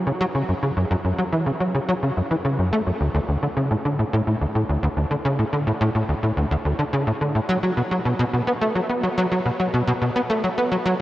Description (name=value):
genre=ambient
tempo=107 BPM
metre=4/4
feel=straight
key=unclear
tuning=A4 = 440 Hz
part: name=tight sequencer bass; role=solo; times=0.0-10.9 s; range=D2 to B3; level=-20 LUFS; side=equal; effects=ensemble chorus, vintage 12-bit sampler grit, analog delay
room=wet huge ambient reverb, RT60 9.4 s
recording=worn, warbling old tape, cassette tape, warbly pitch drift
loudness=-20 LUFS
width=side -15 dB against mid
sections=0.0-11.0 A section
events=none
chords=none